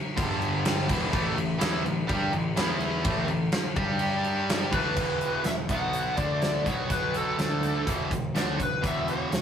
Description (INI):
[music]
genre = hard rock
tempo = 125 BPM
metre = 4/4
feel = straight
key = unclear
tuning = A4 = 440 Hz
[part]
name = distorted electric guitar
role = riff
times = 0.2-9.4 s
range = E2 to G4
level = -29 LUFS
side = equal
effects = overdrive
[part]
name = fuzz picked electric bass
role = bass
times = 0.2-9.4 s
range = E1 to G2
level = -32 LUFS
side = equal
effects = overdrive
[part]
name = huge arena drum kit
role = drums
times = 0.2-9.4 s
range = crash cymbal, hi-hat, kick drum, snare drum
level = -29 LUFS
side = equal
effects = none
[part]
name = bluesy overdriven lead guitar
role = melody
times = 4.7-9.4 s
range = A4 to F#5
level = -30 LUFS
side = left 1 dB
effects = distortion
[sound]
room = moderate studio reverb, RT60 0.6 s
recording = rough rehearsal-room recording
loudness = -24 LUFS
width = side -8 dB against mid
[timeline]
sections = 0.0-5.0 A section; 5.0-9.4 B section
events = none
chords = 0.2 G5; 0.9 E5; 1.1 A5; 2.6 E5; 3.0 A5; 3.8 G5; 4.7 A5; 5.0 E5; 5.7 B5; 6.2 D5; 6.7 B5; 7.4 D5; 7.9 E5